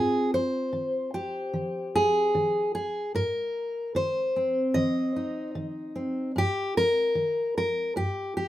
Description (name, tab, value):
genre	folk, solo fingerstyle acoustic guitar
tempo	75 BPM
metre	4/4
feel	straight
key	unclear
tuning	A4 = 440 Hz
part	fingerpicked steel-string acoustic guitar	solo	0.0-8.5 s	G2 to Eb5	-25 LUFS	equal	none
room	wet studio reverb, RT60 0.5 s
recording	minimal, uncompressed stereo recording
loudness	-25 LUFS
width	side -14 dB against mid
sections	0.0-8.5 A section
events	none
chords	0.0 Abadd9; 6.4 Eb/G